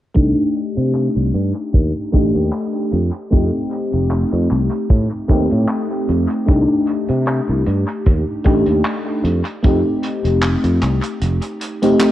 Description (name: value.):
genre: vaporwave.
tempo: 76 BPM.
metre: 4/4.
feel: swing 54% on 16ths.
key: C dorian.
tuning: A4 = 440 Hz.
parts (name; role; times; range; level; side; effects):
FM electric piano with soft pad layer; accompaniment; 0.1-12.1 s; A3 to G4; -18 LUFS; left 1 dB; lush chorus, dub echo.
sustaining fretless electric bass; bass; 0.2-11.4 s; F1 to C3; -18 LUFS; equal; tube saturation, lush chorus.
kick drum; drums; 0.2-9.8 s; none; -16 LUFS; equal; none.
warm soul drum kit; drums; 0.2-12.1 s; handclaps, hi-hat; -28 LUFS; right 1 dB; dub echo.
room: studio reverb.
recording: echo-heavy mix, cassette tape, low-pass filter.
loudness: -15 LUFS.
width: side -13 dB against mid.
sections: 0.2-12.1 A section.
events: filter sweep 0.2-12.1; kick drops out 11.2-12.1.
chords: 0.2 Cm69; 2.9 F7; 6.5 Cm69; 9.2 F7.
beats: | 0.17 0.95 1.75 2.53 | 3.32 4.11 4.90 5.69 | 6.48 7.27 8.06 8.85 | 9.64 10.43 11.22 12.01.